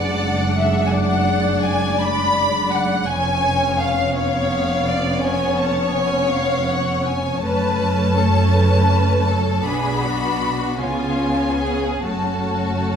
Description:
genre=classical, slow romantic movement for string orchestra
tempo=46-58 BPM (dotted quarters)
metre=12/8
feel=rubato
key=unclear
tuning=A4 = 440 Hz
part: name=rich studio violin section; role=melody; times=0.0-13.0 s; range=C#5 to B5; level=-25 LUFS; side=left 4 dB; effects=none
part: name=rich studio violin section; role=second line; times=0.0-13.0 s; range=E#4 to B5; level=-22 LUFS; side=left 1 dB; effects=none
part: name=rich studio viola section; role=accompaniment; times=0.0-13.0 s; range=G#3 to D4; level=-24 LUFS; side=equal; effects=none
part: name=dark studio double bass section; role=bass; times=0.0-13.0 s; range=E#1 to C#2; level=-24 LUFS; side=right 2 dB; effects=none
part: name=rich studio cello section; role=bass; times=0.0-13.0 s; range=E#2 to C#3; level=-25 LUFS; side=right 2 dB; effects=none
room=wet recital hall reverb, RT60 1.6 s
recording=recorded in a church or concert hall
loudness=-17 LUFS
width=side -7 dB against mid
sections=0.0-13.0 A section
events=none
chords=0.0 G#m7b5/F#; 3.1 C#7/E#; 7.5 F#m; 9.7 Bm; 10.8 C#7; 12.0 F#m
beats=0.94 2.01 | 3.09 4.16 5.23 6.34 | 7.45 8.54 9.66 10.80 | 12.05

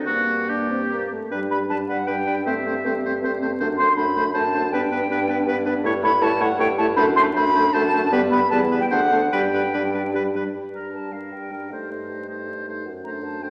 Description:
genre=quick classical-period movement for wind quintet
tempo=142-164 BPM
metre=3/4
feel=rubato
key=G major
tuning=A4 = 440 Hz
part: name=concert flute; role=melody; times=0.0-13.5 s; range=D5 to C6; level=-25 LUFS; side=equal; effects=none
part: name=dark clarinet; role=accompaniment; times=0.0-13.5 s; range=Bb3 to E4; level=-30 LUFS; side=equal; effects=none
part: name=dark bassoon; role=bass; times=0.0-13.5 s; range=D2 to G2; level=-29 LUFS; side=equal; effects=none
part: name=clear oboe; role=second line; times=0.1-13.5 s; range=F#4 to C#5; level=-30 LUFS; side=equal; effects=none
part: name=clear French horn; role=accompaniment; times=0.1-13.5 s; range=G3 to D4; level=-30 LUFS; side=equal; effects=none
room=wet recital hall reverb, RT60 1.8 s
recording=vinyl crackle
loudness=-21 LUFS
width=mono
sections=0.0-1.3 A section; 1.3-10.5 A section; 10.5-13.5 A section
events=none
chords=0.1 Gm; 1.3 G; 2.5 Am7/G; 3.6 D7/F#; 4.7 G; 5.8 A7/G; 7.0 D7/F#; 8.1 G; 8.5 Em; 8.9 D7; 9.3 G; 11.7 Am7b5/G; 12.9 D7/F#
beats=| 0.07 0.49 0.91 | 1.31 1.70 2.08 | 2.46 2.84 3.22 | 3.60 3.97 4.34 | 4.72 5.10 5.47 | 5.85 6.22 6.60 | 6.98 7.36 7.74 | 8.12 8.51 8.91 | 9.32 9.73 10.14 | 10.54 10.94 11.32 | 11.71 12.09 12.47 | 12.85 13.23

